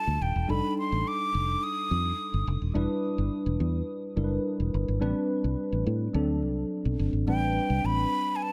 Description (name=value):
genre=pop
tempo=106 BPM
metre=4/4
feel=straight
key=unclear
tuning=A4 = 440 Hz
part: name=breathy concert flute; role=melody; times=0.0-2.5, 7.3-8.5 s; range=G5 to Eb6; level=-33 LUFS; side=equal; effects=tape echo
part: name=tine electric piano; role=accompaniment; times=0.0-8.5 s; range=F#3 to B4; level=-33 LUFS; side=equal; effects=analog chorus
part: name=fingered electric bass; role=bass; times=0.1-8.0 s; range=Eb1 to A2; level=-30 LUFS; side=equal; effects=none
room=light reverb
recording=none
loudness=-28 LUFS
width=mono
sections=0.0-7.3 A section; 7.3-8.5 B section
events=none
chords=0.5 F13; 2.8 Em7; 5.0 Am11; 6.1 D7; 7.3 Am11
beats=| 0.49 1.06 1.62 2.19 | 2.75 3.32 3.88 4.45 | 5.01 5.58 6.15 6.71 | 7.28 7.84 8.41